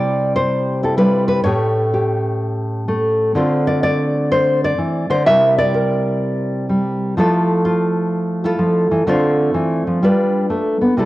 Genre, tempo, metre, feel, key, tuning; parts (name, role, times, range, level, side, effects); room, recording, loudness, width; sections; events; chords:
solo jazz; 126 BPM; 4/4; swing 67% on 8ths; C major; A4 = 440 Hz
nylon-string guitar; solo; 0.0-11.1 s; A2 to E5; -15 LUFS; equal; cassette tape
light reverb, small room ambience; home recording on cassette; -15 LUFS; side -17 dB against mid
0.0-11.1 A section
0.0 C; 1.4 A7; 3.3 Dm7; 5.3 C7; 7.2 Fmaj7; 9.1 Dm7; 10.0 G7